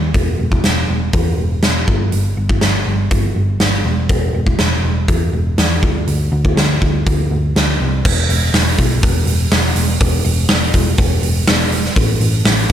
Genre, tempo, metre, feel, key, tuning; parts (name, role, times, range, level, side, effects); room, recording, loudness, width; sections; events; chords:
classic rock; 122 BPM; 4/4; straight; E minor; A4 = 440 Hz
hollow-body short-scale picked electric bass; bass; 0.0-12.7 s; E1 to E2; -17 LUFS; equal
huge arena drum kit; drums; 0.1-12.7 s; crash cymbal, hi-hat, kick drum, snare drum; -15 LUFS; equal
light reverb; -13 LUFS; side -10 dB against mid
0.0-8.0 A section; 8.0-12.7 B section